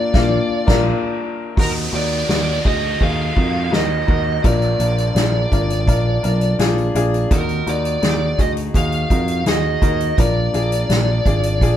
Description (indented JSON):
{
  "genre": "piano-driven pop",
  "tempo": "84 BPM",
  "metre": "4/4",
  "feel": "straight",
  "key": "Eb harmonic minor",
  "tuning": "A4 = 438 Hz",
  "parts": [
    { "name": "fuzz lead guitar", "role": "melody", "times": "0.0-11.8 s", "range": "Bb4 to F5", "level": "-22 LUFS", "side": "equal", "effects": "distortion" },
    { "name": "bright upright piano", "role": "accompaniment", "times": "0.0-11.8 s", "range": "Bb2 to Bb5", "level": "-23 LUFS", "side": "left 4 dB", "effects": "none" },
    { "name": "overdriven picked electric bass", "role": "bass", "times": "0.1-11.8 s", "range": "Ab1 to F2", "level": "-20 LUFS", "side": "right 1 dB", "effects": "none" },
    { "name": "soft-mallet drum kit", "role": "drums", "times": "0.1-11.8 s", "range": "crash cymbal, hi-hat, kick drum, snare drum", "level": "-20 LUFS", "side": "equal", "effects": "none" },
    { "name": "downlifter", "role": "sound effects", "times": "1.6-7.3 s", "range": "none", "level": "-29 LUFS", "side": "right 1 dB", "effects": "none" }
  ],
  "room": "light reverb",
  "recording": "band playing live in one room",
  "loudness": "-15 LUFS",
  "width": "side -11 dB against mid",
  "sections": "0.0-1.6 A section; 1.6-11.8 B section",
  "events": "band accent 0.0-1.6",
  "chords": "0.0 Bb; 1.6 Ebm; 4.4 Bb; 7.3 Ebm; 10.2 Bb",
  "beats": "0.14 0.86 | 1.57 2.29 3.01 3.73 | 4.44 5.16 5.88 6.59 | 7.31 8.03 8.75 9.46 | 10.18 10.90 11.61"
}